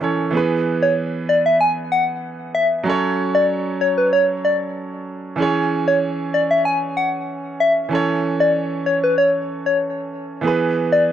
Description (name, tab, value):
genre	dancehall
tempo	95 BPM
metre	4/4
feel	straight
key	unclear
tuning	A4 = 443 Hz
part	clear baby grand piano	accompaniment	0.0-11.1 s	E3 to C#5	-21 LUFS	right 3 dB	none
part	soft struck synth lead	melody	0.8-11.0 s	B4 to G#5	-17 LUFS	left 1 dB	chorus, tape echo
room	moderate booth ambience, RT60 0.2 s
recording	none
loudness	-16 LUFS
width	side -10 dB against mid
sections	0.0-10.4 A section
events	none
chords	0.3 E; 2.9 F#m; 5.4 C#m; 7.9 A; 10.4 E